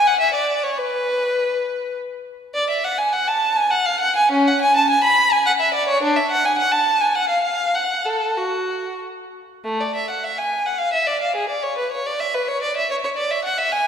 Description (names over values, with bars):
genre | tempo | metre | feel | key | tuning
classical, baroque-style suite movement for unaccompanied violin | 90-110 BPM | 3/4 | rubato | F# minor | A4 = 441 Hz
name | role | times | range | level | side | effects
rich violin | solo | 0.0-13.9 s | A3 to B5 | -17 LUFS | equal | none
room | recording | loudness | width
wet concert hall reverb, RT60 2.6 s | recorded in a church or concert hall | -17 LUFS | side -8 dB against mid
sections
0.0-9.6 A section; 9.6-13.9 A section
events
none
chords
none